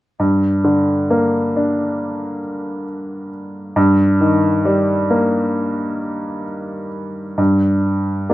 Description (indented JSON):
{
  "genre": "classical, lyrical solo piano",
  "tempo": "67 BPM",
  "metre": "4/4",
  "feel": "rubato",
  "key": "G minor",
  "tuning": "A4 = 440 Hz",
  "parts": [
    { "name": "clear baby grand piano", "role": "solo", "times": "0.2-8.3 s", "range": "G2 to D4", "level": "-16 LUFS", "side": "equal", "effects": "none" }
  ],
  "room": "moderate studio ambience, RT60 0.5 s",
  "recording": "none",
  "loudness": "-15 LUFS",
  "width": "side -16 dB against mid",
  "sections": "0.2-7.4 A section",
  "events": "none",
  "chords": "0.2 Gm; 3.8 Eb/G; 7.4 N.C.",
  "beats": "| 0.20 1.11 2.00 2.88 | 3.77 4.66 5.55 6.46 | 7.39 8.30"
}